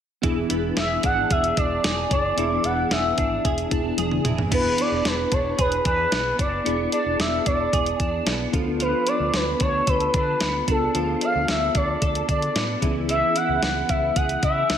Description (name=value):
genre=1980s-style pop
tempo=112 BPM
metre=4/4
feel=straight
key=unclear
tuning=A4 = 441 Hz
part: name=mellow tine electric piano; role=accompaniment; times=0.2-14.8 s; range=B3 to A4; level=-28 LUFS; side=left 2 dB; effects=medium stereo tremolo, slapback echo
part: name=twelve-string electric guitar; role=riff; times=0.2-14.8 s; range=E3 to A4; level=-30 LUFS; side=right 4 dB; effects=ensemble chorus, slapback echo
part: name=fingered electric bass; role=bass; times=0.2-14.8 s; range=E1 to D3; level=-30 LUFS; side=equal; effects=none
part: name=clean 12-bit digital drum machine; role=drums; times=0.2-14.8 s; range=crash cymbal, hi-hat, kick drum, snare drum, toms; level=-25 LUFS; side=equal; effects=none
part: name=expressive portamento lead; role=melody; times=0.8-14.8 s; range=A4 to F#5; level=-23 LUFS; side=equal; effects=chorus, tape echo
room=wet recital hall reverb, RT60 1.4 s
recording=big arena sound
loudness=-20 LUFS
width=side -9 dB against mid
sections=0.2-4.5 A section; 4.5-14.8 B section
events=drum fill 4.0-4.5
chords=0.2 E7; 4.3 N.C.; 4.5 E7; 8.5 Dm6; 12.8 C#m7